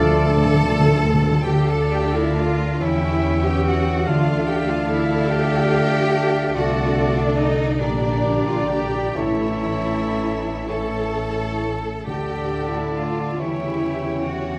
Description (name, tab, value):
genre	classical, slow romantic movement for symphony orchestra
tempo	37-49 BPM (dotted quarters)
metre	6/8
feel	rubato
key	D minor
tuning	A4 = 440 Hz
part	warm studio violin section	melody	0.0-14.6 s	C#5 to G5	-40 LUFS	equal	none
part	rich studio violin section	second line	0.0-14.6 s	D5 to A5	-37 LUFS	equal	none
part	silver concert flute	second line	0.0-14.6 s	F4 to Bb5	-37 LUFS	equal	none
part	warm clarinet	second line	0.0-14.6 s	F4 to D5	-34 LUFS	equal	none
part	warm oboe	second line	0.0-14.6 s	C#5 to F5	-34 LUFS	equal	none
part	mellow bassoon	accompaniment	0.0-14.6 s	D3 to D4	-33 LUFS	equal	none
part	rich studio viola section	accompaniment	0.0-14.6 s	A3 to A4	-32 LUFS	equal	none
part	mellow French horn section	sustained chords	0.0-14.6 s	C#4 to A4	-34 LUFS	equal	none
part	mellow trombone section	sustained chords	0.0-14.6 s	A2 to Bb3	-33 LUFS	equal	none
part	concert harp	arpeggios	0.0-14.6 s	A2 to F5	-29 LUFS	equal	none
part	mellow trumpet section	stabs	0.0-1.1 s	A4	-32 LUFS	equal	none
part	mellow tuba	bass	0.0-1.2 s	none	barely audible	none	none
part	warm studio cello section	bass	0.0-14.6 s	D4 to A4	-27 LUFS	equal	none
part	warm studio double bass section	bass	0.0-14.6 s	A1 to E2	-28 LUFS	equal	none
part	timpani	percussion	0.0-1.4, 9.2-13.4 s	A2 to D3	-25 LUFS	equal	none
room	wet concert hall reverb, RT60 2.4 s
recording	vinyl crackle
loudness	-20 LUFS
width	mono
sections	0.0-1.5 A section; 1.5-14.6 B section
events	timpani fill 0.0-1.5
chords	0.0 Dm; 2.8 C#dim/E; 4.1 Dm; 6.5 D7/C; 7.8 Gm/Bb; 9.2 A; 12.1 Dm; 13.4 C#dim/E